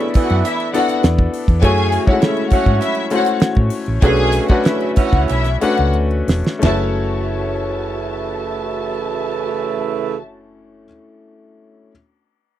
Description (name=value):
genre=lush 1970s-style soul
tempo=87-102 BPM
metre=4/4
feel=straight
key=F# minor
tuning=A4 = 439 Hz
part: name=warm studio string section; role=second line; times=0.0-10.2 s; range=E4 to A5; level=-22 LUFS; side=left 2 dB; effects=none
part: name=clear baby grand piano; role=accompaniment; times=0.0-11.9 s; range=G#3 to E5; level=-21 LUFS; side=left 4 dB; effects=none
part: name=mellow horn section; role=stabs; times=0.0-10.2 s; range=C#3 to F#4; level=-22 LUFS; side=right 8 dB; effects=none
part: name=triangle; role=percussion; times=0.0-6.9 s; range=none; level=-41 LUFS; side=left 19 dB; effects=none
part: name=damped 70s drum kit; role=drums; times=0.1-6.8 s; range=hi-hat, kick drum, ride cymbal, snare drum, toms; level=-14 LUFS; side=equal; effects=none
part: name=hollow-body short-scale fingered electric bass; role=bass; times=0.2-10.9 s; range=E1 to A2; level=-19 LUFS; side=equal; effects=none
room=little or no reverb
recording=dry, close 1970s-style studio recording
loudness=-15 LUFS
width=side -12 dB against mid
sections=0.0-6.6 A section; 6.6-9.4 B section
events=slowing down 1.6-6.6; drum fill 6.0-6.6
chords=0.0 E7sus4; 1.6 F#m7; 4.0 Bm9; 6.6 F#m7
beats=0.45 1.03 | 1.62 2.21 2.81 3.41 | 4.02 4.65 5.29 5.95 | 6.63 7.32 8.02 8.71